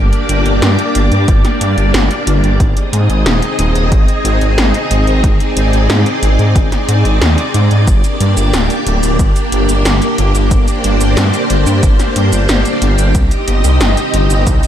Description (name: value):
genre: synthwave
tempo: 91 BPM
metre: 4/4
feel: straight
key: G phrygian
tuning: A4 = 440 Hz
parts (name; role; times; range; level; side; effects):
- string machine, full ensemble; sustained chords; 0.0-14.7 s; Bb3 to Eb5; -16 LUFS; equal; ensemble chorus, sidechain pumping
- wide detuned saw bass; bass; 0.0-14.6 s; D1 to Ab2; -13 LUFS; equal; chorus, tube saturation, sidechain pumping
- 80s electronic pad drums; drums; 0.1-14.7 s; hi-hat, shaker, snare drum; -19 LUFS; equal; none
- electronic kick drum; drums; 1.3-14.6 s; none; -12 LUFS; equal; none
room: light reverb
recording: none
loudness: -10 LUFS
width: side -10 dB against mid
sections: 0.0-14.7 A section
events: none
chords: 0.0 Gm; 2.6 Ab; 7.9 Gm; 13.2 Cm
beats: 0.62 1.28 1.94 | 2.60 3.26 3.92 4.58 | 5.24 5.90 6.56 7.21 | 7.88 8.53 9.19 9.85 | 10.51 11.17 11.83 12.49 | 13.15 13.81 14.47